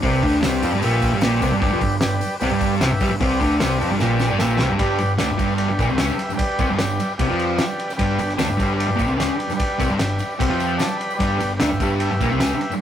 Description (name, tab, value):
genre	garage rock duo or trio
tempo	150 BPM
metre	4/4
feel	straight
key	G major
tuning	A4 = 439 Hz
part	combo organ	sustained chords	0.0-12.7 s	G4 to B5	-25 LUFS	equal	none
part	thick fuzz guitar	riff	0.0-12.7 s	F2 to F4	-22 LUFS	equal	distortion
part	growling picked electric bass	bass	0.0-12.8 s	F1 to F2	-24 LUFS	equal	overdrive
part	cloth-damped thuddy drum kit	drums	0.0-12.7 s	hi-hat, kick drum, ride cymbal, snare drum	-24 LUFS	equal	none
part	tambourine	percussion	0.4-12.8 s	none	-42 LUFS	right 6 dB	none
room	moderate stone room reverb, RT60 1.3 s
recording	rough rehearsal-room recording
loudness	-18 LUFS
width	side -10 dB against mid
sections	0.0-4.8 A section; 4.8-12.8 B section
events	drum fill 4.0-4.8; transistor combo organ fill 10.0-11.2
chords	0.0 G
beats	| 0.03 0.43 0.82 1.22 | 1.62 2.01 2.41 2.81 | 3.20 3.60 4.00 4.40 | 4.79 5.19 5.59 5.99 | 6.39 6.79 7.19 7.59 | 8.00 8.40 8.80 9.20 | 9.60 10.00 10.40 10.80 | 11.20 11.60 12.00 12.40